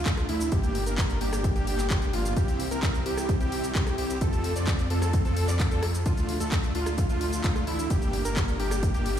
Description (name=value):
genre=EDM, festival progressive house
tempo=130 BPM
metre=4/4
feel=straight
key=unclear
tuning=A4 = 440 Hz
part: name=wide unison lead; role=arpeggios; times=0.0-9.2 s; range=E4 to D5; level=-32 LUFS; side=equal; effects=sidechain pumping, ping-pong delay
part: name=dense compressed supersaw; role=riff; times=0.0-9.2 s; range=A3 to D5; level=-32 LUFS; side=equal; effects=sidechain pumping, ping-pong delay
part: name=wide detuned saw bass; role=bass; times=0.0-9.2 s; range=G1 to F2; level=-30 LUFS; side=equal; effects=chorus, sidechain pumping
part: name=electronic kick drum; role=drums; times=0.1-8.9 s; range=none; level=-26 LUFS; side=equal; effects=overdrive, small room reverb
part: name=house drum kit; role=drums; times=0.1-9.2 s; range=handclaps, hi-hat, rim click, shaker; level=-34 LUFS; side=left 1 dB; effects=overdrive, small room reverb
room=light reverb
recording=played on a big sound system in a bare room, stone room reverb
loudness=-24 LUFS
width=side -10 dB against mid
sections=0.0-9.2 A section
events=none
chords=0.0 Dm; 0.5 Gm; 2.4 C; 4.2 F; 6.1 Dm; 7.9 Gm